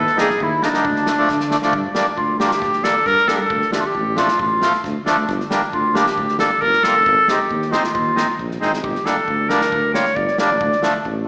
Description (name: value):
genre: klezmer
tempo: 135 BPM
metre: 4/4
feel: straight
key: G minor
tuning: A4 = 441 Hz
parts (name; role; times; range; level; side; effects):
- bright clarinet; melody; 0.0-11.0 s; D4 to D5; -20 LUFS; equal; plate reverb
- accordion; second line; 0.0-1.5 s; D4 to A4; -28 LUFS; equal; plate reverb, slapback echo
- mellow tuba; bass; 0.0-11.3 s; F1 to D3; -28 LUFS; equal; none
- warm soul drum kit; drums; 0.1-11.2 s; kick drum, snare drum; -29 LUFS; equal; none
- accordion; accompaniment; 0.2-10.9 s; F3 to F4; -24 LUFS; equal; plate reverb, slapback echo
room: moderate club reverb, RT60 0.6 s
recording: live gig heard through the venue's PA, recital hall reverb, small speaker sound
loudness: -18 LUFS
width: mono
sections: 0.0-1.7 A section; 1.7-11.3 B section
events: drum fill 1.3-1.7, 8.6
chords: 0.0 Eb; 0.8 Dm; 1.7 Gm; 3.5 Dm; 5.3 Gm; 7.1 Ab; 8.8 Gm; 10.6 Dm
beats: 0.40 0.84 1.29 | 1.73 2.17 2.62 3.06 | 3.50 3.95 4.39 4.84 | 5.28 5.73 6.17 6.61 | 7.06 7.50 7.95 8.39 | 8.83 9.28 9.72 10.16 | 10.61 11.05